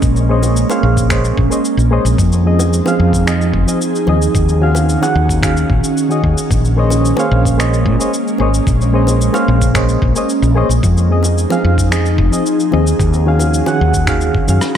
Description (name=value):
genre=sunset chillout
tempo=111 BPM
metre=4/4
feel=straight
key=Bb minor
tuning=A4 = 438 Hz
part: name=ethereal airy pad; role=sustained chords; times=0.0-14.8 s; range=Eb3 to Ab4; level=-18 LUFS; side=right 2 dB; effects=ensemble chorus, built-in reverb
part: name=woody fretless electric bass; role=bass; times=0.0-14.6 s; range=F1 to Bb2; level=-13 LUFS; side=equal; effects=tube saturation
part: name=electronic cabasa, finger snaps and rim click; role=drums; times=0.0-14.8 s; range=none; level=-23 LUFS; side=left 1 dB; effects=overdrive
part: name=electronic kick drum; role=drums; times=0.0-14.5 s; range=none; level=-18 LUFS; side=equal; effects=overdrive
part: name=soft electric-piano-like synth keys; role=accompaniment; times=0.3-14.6 s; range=Eb3 to Gb5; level=-18 LUFS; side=moving between left 6 dB and right 4 dB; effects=chorus, tremolo, auto-pan, low-pass filter, diffuse ambient delay
part: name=bongos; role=percussion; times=0.4-13.8 s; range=none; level=-27 LUFS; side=left 5 dB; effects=none
room=moderate plate reverb, RT60 1.7 s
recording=dreamy mix soaked in reverb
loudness=-11 LUFS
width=side -9 dB against mid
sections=0.0-14.8 A section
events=drum fill 14.6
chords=0.0 Bbm11; 2.2 Fm7; 4.3 Ebm11; 6.5 Bbm11; 10.8 Fm7; 13.0 Ebm11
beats=| 0.02 0.56 1.10 1.65 | 2.19 2.73 3.27 3.81 | 4.35 4.89 5.43 5.97 | 6.51 7.05 7.59 8.13 | 8.67 9.21 9.75 10.29 | 10.83 11.38 11.91 12.46 | 13.00 13.54 14.08 14.62